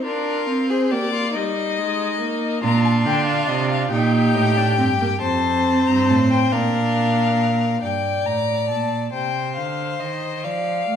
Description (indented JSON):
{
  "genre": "classical, baroque-style fugue for string quartet",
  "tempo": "46 BPM (dotted quarters)",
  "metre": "6/8",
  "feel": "straight",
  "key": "unclear",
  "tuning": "A4 = 440 Hz",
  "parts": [
    { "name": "warm violin", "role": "melody", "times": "0.0-11.0 s", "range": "Bb4 to Bb5", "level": "-24 LUFS", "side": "left 8 dB", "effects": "none" },
    { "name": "clear violin", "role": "second line", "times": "0.0-11.0 s", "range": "Eb4 to D5", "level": "-25 LUFS", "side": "left 3 dB", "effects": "none" },
    { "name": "rich viola", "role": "accompaniment", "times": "0.0-7.8 s", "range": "G3 to Eb4", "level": "-22 LUFS", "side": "right 2 dB", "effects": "none" },
    { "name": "clear cello", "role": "bass", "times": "2.6-11.0 s", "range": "F2 to A3", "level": "-22 LUFS", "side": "right 4 dB", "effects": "none" }
  ],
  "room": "wet recital hall reverb, RT60 1.3 s",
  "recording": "recorded in a church or concert hall",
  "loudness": "-18 LUFS",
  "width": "side -8 dB against mid",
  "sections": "0.0-7.8 A section; 7.8-11.0 B section",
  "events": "none",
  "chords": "0.0 Bb; 1.3 Eb/G; 2.6 Bb; 3.9 Cm7 (rootless); 5.2 F; 6.5 Bb; 7.8 Gm; 9.1 Cm; 10.4 F"
}